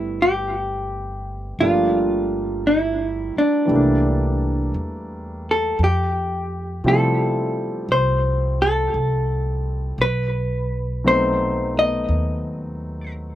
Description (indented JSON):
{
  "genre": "jazz ballad",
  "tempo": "57 BPM",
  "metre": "4/4",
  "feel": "swing 68% on 8ths",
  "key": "C major",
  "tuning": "A4 = 439 Hz",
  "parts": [
    { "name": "vintage hollow-body jazz guitar", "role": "melody", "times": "0.0-13.1 s", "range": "D4 to D#5", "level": "-21 LUFS", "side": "equal", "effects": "slapback echo" },
    { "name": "warm concert grand piano", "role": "accompaniment", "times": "0.0-13.4 s", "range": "E3 to E4", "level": "-26 LUFS", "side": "equal", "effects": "none" },
    { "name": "upright bass", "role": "bass", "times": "0.0-13.4 s", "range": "G1 to C3", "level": "-24 LUFS", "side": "equal", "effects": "none" }
  ],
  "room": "little or no reverb",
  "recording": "recorded outdoors, with no room sound",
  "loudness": "-18 LUFS",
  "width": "side -12 dB against mid",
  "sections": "0.0-13.4 A section",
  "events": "none",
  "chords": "0.0 Cmaj9; 1.6 Gm7; 3.7 C13; 5.8 Fmaj7; 10.0 B7b9",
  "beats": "0.55 | 1.60 2.65 3.70 4.75 | 5.79 6.84 7.89 8.94 | 9.99 11.04 12.09 13.15"
}